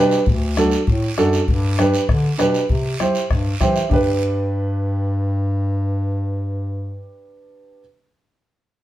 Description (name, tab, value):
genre	latin, cumbia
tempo	198 BPM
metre	4/4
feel	straight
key	G major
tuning	A4 = 441 Hz
part	dark upright piano	accompaniment	0.0-7.8 s	D4 to G5	-20 LUFS	right 2 dB	none
part	mellow bass clarinet	bass	0.0-7.1 s	D2 to E3	-21 LUFS	equal	none
part	guiro	percussion	0.1-4.0 s	none	-31 LUFS	right 4 dB	none
part	bombo	percussion	0.3-4.0 s	none	-20 LUFS	left 2 dB	none
part	congas	percussion	0.3-4.0 s	none	-26 LUFS	left 3 dB	none
room	light reverb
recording	band playing live in one room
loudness	-17 LUFS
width	side -14 dB against mid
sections	0.0-3.9 A section; 3.9-6.3 B section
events	upright piano fill 3.5-3.9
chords	0.3 D; 1.5 G; 2.7 C; 3.9 G